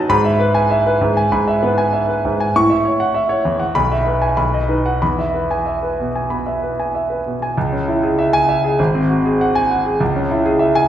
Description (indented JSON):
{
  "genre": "classical, virtuoso piano study",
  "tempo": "98 BPM",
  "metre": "4/4",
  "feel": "rubato",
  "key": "C# minor from 7.6 s",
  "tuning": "A4 = 440 Hz",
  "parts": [
    { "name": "clear concert grand piano", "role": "solo", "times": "0.0-10.9 s", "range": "G#1 to C#6", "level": "-14 LUFS", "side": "equal", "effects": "none" }
  ],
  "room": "wet recital hall reverb, RT60 1.5 s",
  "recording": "heard from further back in the room",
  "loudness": "-15 LUFS",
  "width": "side -10 dB against mid",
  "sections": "0.0-7.6 A section; 7.6-10.9 B section",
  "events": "none",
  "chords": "0.1 E/G#; 2.5 F#m7/A; 3.7 E/B; 4.4 B; 5.0 E; 7.6 C#m; 8.8 G#7; 10.0 C#m",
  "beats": "| 0.09 0.70 1.30 1.91 | 2.52 3.13 3.74 4.37 | 5.01 5.65 6.29 6.93 | 7.56 8.17 8.78 9.40 | 10.00 10.60"
}